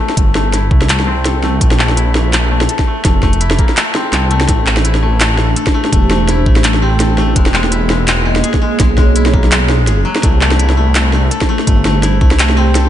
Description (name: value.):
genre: half-time drum and bass.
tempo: 167 BPM.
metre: 4/4.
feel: swing 56% on 16ths, half-time.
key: A phrygian.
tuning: A4 = 442 Hz.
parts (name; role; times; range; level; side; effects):
koto; arpeggios; 0.0-12.9 s; F#3 to A4; -19 LUFS; left 4 dB; low-pass filter, ping-pong delay.
industrial drum kit; drums; 0.1-12.8 s; handclaps, hi-hat, snare drum; -16 LUFS; equal; none.
dark detuned saw bass; bass; 0.2-12.9 s; E1 to C2; -13 LUFS; equal; tube saturation.
electronic kick drum; drums; 0.2-12.3 s; none; -12 LUFS; equal; overdrive.
dark analog pad; sustained chords; 4.5-12.9 s; A3 to D#5; -19 LUFS; right 2 dB; chorus, sidechain pumping.
room: digital ambience.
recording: nothing above 10.3 kHz.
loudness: -10 LUFS.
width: side -11 dB against mid.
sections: 0.0-12.9 A section.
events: filter sweep on koto 0.0-12.9.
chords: 0.0 C6; 1.6 Bb5; 4.5 Am; 7.4 E; 10.2 C6.